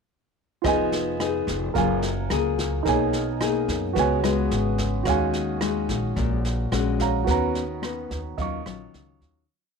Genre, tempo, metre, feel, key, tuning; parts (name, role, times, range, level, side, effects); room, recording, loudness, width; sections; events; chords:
bossa nova; 109 BPM; 4/4; straight; Eb minor; A4 = 440 Hz
nylon-string guitar; accompaniment; 0.6-9.5 s; Bb2 to Ab4; -26 LUFS; left 10 dB
warm grand piano; accompaniment; 0.6-9.5 s; D#4 to Db6; -27 LUFS; right 14 dB
upright bass; bass; 0.6-9.5 s; F1 to F#2; -28 LUFS; right 1 dB
jazz brush drum kit; drums; 0.6-9.3 s; kick drum, rim click, snare drum; -32 LUFS; right 1 dB
light reverb; 1960s-style stereo with parts hard left and right; -22 LUFS; side -5 dB against mid
0.6-9.5 A section
fade-out 7.3-9.5
0.6 Fm7b5; 1.8 Gbmaj9; 2.9 Bmaj13; 4.0 Db7sus4; 5.1 Ebm11; 7.3 Bmaj9/D#; 8.4 Ebm9